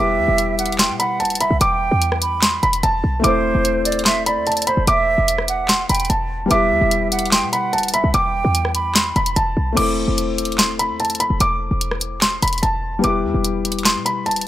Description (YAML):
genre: hip hop, trap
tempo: 147 BPM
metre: 4/4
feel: half-time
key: unclear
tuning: A4 = 442 Hz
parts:
  - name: dark grand piano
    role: melody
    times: 0.0-14.4 s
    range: A5 to D6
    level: -21 LUFS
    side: equal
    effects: digital delay
  - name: hollow concert flute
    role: second line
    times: 0.0-9.3 s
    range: C5 to B5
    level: -21 LUFS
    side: right 4 dB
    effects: digital delay
  - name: felt-muted upright piano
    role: accompaniment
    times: 0.0-14.5 s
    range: G3 to C5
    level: -24 LUFS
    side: left 4 dB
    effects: none
  - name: short 808-style bass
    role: bass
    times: 0.0-14.5 s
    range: E1 to B2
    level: -23 LUFS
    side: equal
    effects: none
  - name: trap drum kit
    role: drums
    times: 0.4-14.5 s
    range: crash cymbal, handclaps, hi-hat, rim click, snare drum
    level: -20 LUFS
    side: equal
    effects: none
room: studio ambience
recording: none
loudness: -16 LUFS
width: side -13 dB against mid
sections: 0.0-9.8 A section; 9.8-14.5 A section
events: none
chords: 0.0 Em; 3.2 Am/E; 6.5 Em; 9.8 Am/E; 13.0 Em